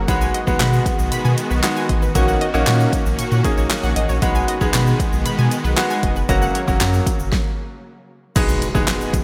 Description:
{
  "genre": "dance-pop",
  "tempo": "116 BPM",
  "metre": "4/4",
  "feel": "straight",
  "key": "B major",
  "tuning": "A4 = 440 Hz",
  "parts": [
    { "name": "supersaw pad", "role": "sustained chords", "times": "0.0-9.2 s", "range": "C#3 to F#4", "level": "-28 LUFS", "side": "equal", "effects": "sidechain pumping" },
    { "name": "analog pluck", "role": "arpeggios", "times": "0.0-6.9 s", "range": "A#4 to C#6", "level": "-31 LUFS", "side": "equal", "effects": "chorus, sidechain pumping, delay" },
    { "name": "warm sub bass", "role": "bass", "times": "0.0-9.2 s", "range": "E#1 to B2", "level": "-22 LUFS", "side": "equal", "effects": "sidechain pumping" },
    { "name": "bright grand piano", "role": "accompaniment", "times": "0.1-9.1 s", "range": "F#3 to G#4", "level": "-25 LUFS", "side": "equal", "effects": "sidechain pumping" },
    { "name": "deep house drum kit", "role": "drums", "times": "0.1-9.2 s", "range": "crash cymbal, handclaps, hi-hat, kick drum, snare drum", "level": "-23 LUFS", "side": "equal", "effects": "none" },
    { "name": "tube shaker", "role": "percussion", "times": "0.1-9.2 s", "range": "none", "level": "-39 LUFS", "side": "equal", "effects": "none" },
    { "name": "impact", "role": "sound effects", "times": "8.5-9.2 s", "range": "none", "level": "-30 LUFS", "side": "equal", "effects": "none" }
  ],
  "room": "moderate lush hall reverb, RT60 1.8 s, digital ambience",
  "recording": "bright 1980s-style digital production",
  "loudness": "-18 LUFS",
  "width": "mono",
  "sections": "0.0-8.4 A section",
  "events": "stop 7.3-8.4; impact 8.4-9.2",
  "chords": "0.1 B6; 2.2 D#m7/A#; 4.2 B6; 6.3 F#; 8.4 B6"
}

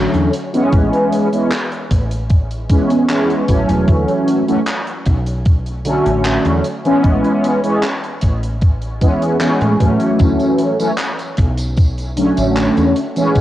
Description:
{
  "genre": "vaporwave",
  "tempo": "76 BPM",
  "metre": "4/4",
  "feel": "straight",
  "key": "A major",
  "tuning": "A4 = 441 Hz",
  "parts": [
    { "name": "mellow synth brass", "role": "accompaniment", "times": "0.0-13.4 s", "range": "D3 to C#4", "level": "-15 LUFS", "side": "equal", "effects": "ensemble chorus, tape echo" },
    { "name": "woody fretless electric bass", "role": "bass", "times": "0.0-13.4 s", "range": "E1 to A2", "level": "-19 LUFS", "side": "equal", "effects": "none" },
    { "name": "tight metal drum kit", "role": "drums", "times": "0.1-13.4 s", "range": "handclaps, hi-hat, tambourine", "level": "-26 LUFS", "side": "equal", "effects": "cassette tape" },
    { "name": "electronic kick drum", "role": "drums", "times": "0.7-13.4 s", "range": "none", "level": "-12 LUFS", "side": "equal", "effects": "cassette tape" }
  ],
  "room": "light reverb, small room ambience",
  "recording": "home recording on cassette",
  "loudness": "-13 LUFS",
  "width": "side -14 dB against mid",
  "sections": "0.0-13.4 A section",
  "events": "none",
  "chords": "0.3 Amaj9; 3.9 Dmaj7; 5.1 Bm9; 6.6 Amaj9; 10.2 Dmaj7; 11.4 Bm9"
}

